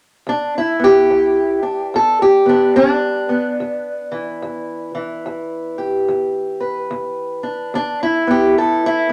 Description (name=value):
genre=acoustic country blues, solo or duo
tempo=72 BPM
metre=4/4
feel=swing 62% on 8ths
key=E minor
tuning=A4 = 440 Hz
part: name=fingerpicked steel-string acoustic guitar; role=solo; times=0.3-9.1 s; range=E2 to B4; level=-17 LUFS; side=equal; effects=none
room=moderate studio reverb, RT60 0.5 s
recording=none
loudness=-17 LUFS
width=mono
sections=0.3-9.1 A section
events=none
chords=0.3 Em7